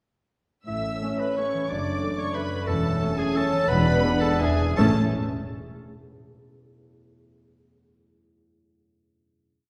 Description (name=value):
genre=classical, orchestral ballroom waltz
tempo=157-197 BPM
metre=3/4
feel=rubato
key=A major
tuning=A4 = 441 Hz
part: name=rich studio violin section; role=melody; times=0.7-5.0 s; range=G#5 to E6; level=-38 LUFS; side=equal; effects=none
part: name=clear oboe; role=second line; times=0.7-4.9 s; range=G#4 to E5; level=-36 LUFS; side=equal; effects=none
part: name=rich studio violin section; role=second line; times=0.7-5.0 s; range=G#4 to A5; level=-38 LUFS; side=equal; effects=none
part: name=warm clarinet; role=second line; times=0.7-4.9 s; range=G#4 to E5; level=-35 LUFS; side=equal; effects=none
part: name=mellow bassoon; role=accompaniment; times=0.7-4.9 s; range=E3 to E4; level=-33 LUFS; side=equal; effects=none
part: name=mellow French horn section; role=sustained chords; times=0.7-4.9 s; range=G#3 to D4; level=-33 LUFS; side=equal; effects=none
part: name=concert harp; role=arpeggios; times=0.7-5.0 s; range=E2 to A4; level=-36 LUFS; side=equal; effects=none
part: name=rich chamber cello section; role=bass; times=0.7-5.0 s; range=E2 to A2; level=-32 LUFS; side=equal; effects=none
part: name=rich chamber double bass section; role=bass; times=0.7-5.0 s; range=E1 to A1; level=-31 LUFS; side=equal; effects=none
part: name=rich studio viola section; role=accompaniment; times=1.0-5.0 s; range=G#3 to D4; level=-34 LUFS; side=equal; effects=none
part: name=timpani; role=percussion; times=3.7-4.9 s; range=E2 to A2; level=-32 LUFS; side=equal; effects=none
room=wet concert hall reverb, RT60 1.9 s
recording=heard from further back in the room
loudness=-24 LUFS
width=mono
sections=0.7-4.8 A section; 4.8-5.8 final chord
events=timpani fill 3.7-4.8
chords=0.7 A; 1.7 D/F#; 2.7 A/E; 3.7 E7; 4.8 A